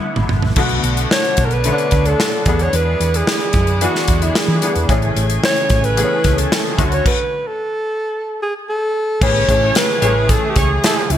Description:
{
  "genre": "polished 1980s jazz-funk pop",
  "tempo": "111 BPM",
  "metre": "4/4",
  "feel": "straight",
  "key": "A major",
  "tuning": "A4 = 435 Hz",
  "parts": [
    { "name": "breathy alto saxophone", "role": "melody", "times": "0.0-11.2 s", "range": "E4 to C#5", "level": "-19 LUFS", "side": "right 1 dB", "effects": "none" },
    { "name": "bright concert grand piano", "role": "accompaniment", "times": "0.0-11.2 s", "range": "D3 to G#4", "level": "-21 LUFS", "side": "left 3 dB", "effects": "ensemble chorus" },
    { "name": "hollow-body short-scale fingered electric bass", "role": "bass", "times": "0.2-11.2 s", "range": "G#1 to E3", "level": "-18 LUFS", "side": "equal", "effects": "none" },
    { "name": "modern studio drum kit", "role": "drums", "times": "0.2-11.2 s", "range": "crash cymbal, hi-hat, kick drum, snare drum, toms", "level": "-18 LUFS", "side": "equal", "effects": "gated reverb" },
    { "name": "rich studio string section", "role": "sustained chords", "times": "0.6-11.2 s", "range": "B2 to G#5", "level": "-27 LUFS", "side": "right 1 dB", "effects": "none" },
    { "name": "mellow horn section", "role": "second line", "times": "9.2-11.1 s", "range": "A3 to C#5", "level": "-23 LUFS", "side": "right 2 dB", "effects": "none" }
  ],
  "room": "light reverb, studio ambience",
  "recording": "bright 1980s-style digital production",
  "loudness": "-14 LUFS",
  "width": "side -10 dB against mid",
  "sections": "0.6-9.2 A section; 9.2-11.2 B section",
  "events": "drum fill 0.0-0.6; stop 7.1-9.2",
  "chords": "0.0 E7sus4; 0.6 Bm7; 2.5 E7; 4.9 Amaj7; 6.8 Dmaj7; 8.7 N.C.; 9.2 Amaj7"
}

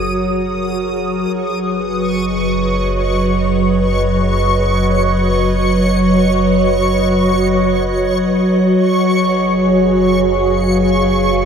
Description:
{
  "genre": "ambient",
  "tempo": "free time",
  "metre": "none",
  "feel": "none",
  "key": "unclear",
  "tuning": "A4 = 439 Hz",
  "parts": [
    { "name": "soft additive organ-like pad", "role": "sustained chords", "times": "0.0-11.5 s", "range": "F#3 to E#5", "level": "-14 LUFS", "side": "equal", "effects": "ensemble chorus, built-in reverb" },
    { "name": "round analog bass", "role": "bass", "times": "0.0-11.5 s", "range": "F#1", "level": "-21 LUFS", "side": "equal", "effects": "none" },
    { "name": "backwards swelling texture", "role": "texture", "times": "0.0-11.5 s", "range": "C#6 to D#6", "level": "-22 LUFS", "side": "left 2 dB", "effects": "built-in reverb, analog chorus" }
  ],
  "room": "wet plate reverb, RT60 2.7 s",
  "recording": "dreamy mix soaked in reverb, cassette tape",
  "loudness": "-12 LUFS",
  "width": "side -7 dB against mid",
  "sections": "0.0-11.5 A section",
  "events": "none",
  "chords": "0.0 F#add9; 1.3 Badd9/F#; 8.8 C#/F#"
}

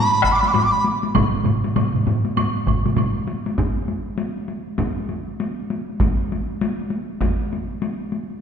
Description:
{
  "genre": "japanese traditional, taiko drum ensemble",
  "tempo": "99 BPM",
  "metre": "4/4",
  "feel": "swing 60% on 16ths",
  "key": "unclear",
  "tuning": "A4 = 440 Hz",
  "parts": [
    { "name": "mellow hollow dizi", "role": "melody", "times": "0.0-0.8 s", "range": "B5 to D6", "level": "-19 LUFS", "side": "right 1 dB", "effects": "none" },
    { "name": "taiko ensemble", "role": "percussion", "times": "0.2-3.2 s", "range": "none", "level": "-22 LUFS", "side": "left 1 dB", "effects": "none" },
    { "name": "taiko ensemble", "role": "percussion", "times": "0.2-7.4 s", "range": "none", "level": "-24 LUFS", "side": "right 1 dB", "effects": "none" },
    { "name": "solo taiko drums", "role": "percussion", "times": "0.4-8.4 s", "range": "none", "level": "-24 LUFS", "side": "left 3 dB", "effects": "none" },
    { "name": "woodblock", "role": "percussion", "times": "0.5-3.1 s", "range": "none", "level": "-29 LUFS", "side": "right 2 dB", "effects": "none" },
    { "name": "taiko ensemble", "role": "percussion", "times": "1.1-3.1 s", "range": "none", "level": "-25 LUFS", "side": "right 5 dB", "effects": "none" }
  ],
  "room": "wet scoring stage reverb, RT60 1.8 s",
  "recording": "recorded in a church or concert hall",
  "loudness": "-19 LUFS",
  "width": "side -7 dB against mid",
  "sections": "0.0-3.6 A section; 3.6-8.4 B section",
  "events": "none",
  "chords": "none"
}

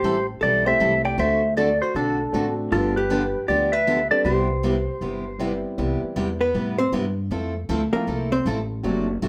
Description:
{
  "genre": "country, western swing",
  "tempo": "157 BPM",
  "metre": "4/4",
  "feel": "swing 64% on 8ths",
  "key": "C major",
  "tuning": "A4 = 439 Hz",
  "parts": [
    { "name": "clean lap steel guitar", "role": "melody", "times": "0.0-5.6 s", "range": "A4 to G5", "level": "-25 LUFS", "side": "equal", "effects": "none" },
    { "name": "hollow-body jazz guitar", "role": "second line", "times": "0.0-8.5 s", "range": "Bb3 to D5", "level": "-28 LUFS", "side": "equal", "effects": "none" },
    { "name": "picked steel-string acoustic guitar", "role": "accompaniment", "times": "0.0-9.3 s", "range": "C3 to A4", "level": "-29 LUFS", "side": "equal", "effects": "none" },
    { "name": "upright bass", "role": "bass", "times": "0.0-9.3 s", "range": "F#1 to A2", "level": "-30 LUFS", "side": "equal", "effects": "none" },
    { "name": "clear upright piano", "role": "accompaniment", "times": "0.6-9.1 s", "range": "E3 to G4", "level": "-31 LUFS", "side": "equal", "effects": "none" }
  ],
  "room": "moderate club reverb, RT60 0.8 s",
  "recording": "none",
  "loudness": "-23 LUFS",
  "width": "mono",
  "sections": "0.0-5.8 A section; 5.8-9.3 B section",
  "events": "hollow-body jazz guitar solo 5.8-9.3",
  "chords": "0.0 Am7; 1.2 D7; 2.7 G7; 4.2 Cmaj7; 7.3 Fmaj7"
}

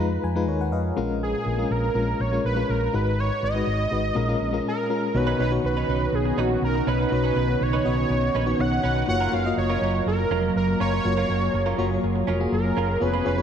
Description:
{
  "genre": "pop",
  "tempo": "122 BPM",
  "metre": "4/4",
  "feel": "straight",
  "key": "unclear",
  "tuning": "A4 = 440 Hz",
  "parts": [
    { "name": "wide unison lead", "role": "melody", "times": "0.0-13.4 s", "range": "F#4 to F#5", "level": "-27 LUFS", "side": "right 2 dB", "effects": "none" },
    { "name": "FM electric piano with tremolo", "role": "accompaniment", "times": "0.0-13.4 s", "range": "Ab2 to Bb5", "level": "-27 LUFS", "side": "left 4 dB", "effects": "none" },
    { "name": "fingered electric bass", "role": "bass", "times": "0.0-13.4 s", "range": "F1 to F2", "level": "-26 LUFS", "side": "right 1 dB", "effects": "none" },
    { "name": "glassy FM pad", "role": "sustained chords", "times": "5.9-13.4 s", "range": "C#3 to Bb4", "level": "-29 LUFS", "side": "right 2 dB", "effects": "ensemble chorus, built-in reverb" },
    { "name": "direct-recorded clean electric guitar", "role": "riff", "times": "5.1-13.4 s", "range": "C#4 to B4", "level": "-32 LUFS", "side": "right 7 dB", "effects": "wide subtle chorus" },
    { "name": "analog synth brass", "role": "stabs", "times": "5.2-13.4 s", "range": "D#3 to Bb4", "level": "-31 LUFS", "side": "right 3 dB", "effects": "chorus, digital delay" }
  ],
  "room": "moderate lush hall reverb, RT60 2.6 s",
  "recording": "dark, warm production",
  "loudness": "-21 LUFS",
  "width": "side -8 dB against mid",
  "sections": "0.0-5.2 A section; 5.2-13.4 B section",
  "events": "FM electric piano fill 0.0-1.2",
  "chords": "0.0 Fm7b5; 1.0 Bbm7; 2.9 Abm7; 4.2 Bbm7; 5.2 Badd9; 9.1 Gbmaj7"
}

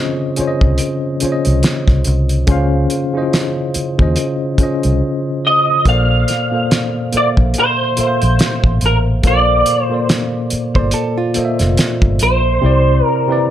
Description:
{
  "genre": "R&B, neo-soul",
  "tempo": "71 BPM",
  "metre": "4/4",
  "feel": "swing 57% on 16ths",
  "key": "unclear",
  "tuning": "A4 = 443 Hz",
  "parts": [
    { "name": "tine electric piano", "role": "accompaniment", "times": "0.0-13.5 s", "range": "Bb2 to Db6", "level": "-18 LUFS", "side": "left 1 dB", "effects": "overdrive, fast stereo tremolo" },
    { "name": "vintage muted fingered electric bass", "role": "bass", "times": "0.4-13.0 s", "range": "F1 to Eb2", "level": "-15 LUFS", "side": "equal", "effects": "none" },
    { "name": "cloth-damped thuddy drum kit", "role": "drums", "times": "0.4-12.4 s", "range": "hi-hat, kick drum, snare drum", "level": "-16 LUFS", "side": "equal", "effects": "none" },
    { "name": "electric guitar through a small old amp", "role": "melody", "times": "5.5-13.4 s", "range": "Bb4 to F5", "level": "-15 LUFS", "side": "right 1 dB", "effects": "ensemble chorus" },
    { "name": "hollow-body jazz guitar", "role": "second line", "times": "10.8-12.4 s", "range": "F4 to C5", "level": "-22 LUFS", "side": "right 5 dB", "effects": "plate reverb" }
  ],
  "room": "light reverb",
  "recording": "none",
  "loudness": "-12 LUFS",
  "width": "side -11 dB against mid",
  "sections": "0.0-13.5 A section",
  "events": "silent gap 5.0-5.9",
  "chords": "0.0 Dbmaj9; 5.9 Bbmaj9; 12.6 Cmaj9"
}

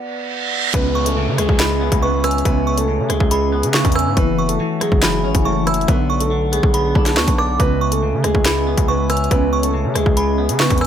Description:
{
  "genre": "hip hop, drill",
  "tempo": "140 BPM",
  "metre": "4/4",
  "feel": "half-time",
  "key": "unclear",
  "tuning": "A4 = 440 Hz",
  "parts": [
    { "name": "glass harmonica", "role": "sustained chords", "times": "0.0-10.9 s", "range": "B3 to G#5", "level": "-29 LUFS", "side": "equal", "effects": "none" },
    { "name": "reverse cymbal and downlifter", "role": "sound effects", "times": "0.1-4.2 s", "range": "none", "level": "-26 LUFS", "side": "right 4 dB", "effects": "none" },
    { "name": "dark concert grand piano", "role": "melody", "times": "0.7-10.9 s", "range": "G#3 to B4", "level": "-22 LUFS", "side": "right 1 dB", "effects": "none" },
    { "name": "clean electric guitar", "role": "accompaniment", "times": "0.7-10.9 s", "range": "C#3 to D5", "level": "-21 LUFS", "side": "left 1 dB", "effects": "phaser" },
    { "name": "distorted 808-style bass", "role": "bass", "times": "0.7-10.9 s", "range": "F#1 to C#3", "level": "-21 LUFS", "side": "equal", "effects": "distortion" },
    { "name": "drill drum kit", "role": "drums", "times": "0.7-10.9 s", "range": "handclaps, hi-hat, kick drum, rim click, snare drum", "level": "-18 LUFS", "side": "equal", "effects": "none" },
    { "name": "delicate synth tine bell", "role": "second line", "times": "1.0-10.9 s", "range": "B5 to E6", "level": "-24 LUFS", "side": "right 4 dB", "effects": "chorus, ping-pong delay" }
  ],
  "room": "little or no reverb",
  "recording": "none",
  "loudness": "-15 LUFS",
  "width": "side -9 dB against mid",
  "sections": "0.7-10.9 A section",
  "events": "break 0.0-0.7; reverse cymbal 0.1-0.7",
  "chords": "0.0 Bm; 0.7 C#m7; 4.2 F#m7; 5.9 Bm; 7.6 C#m7"
}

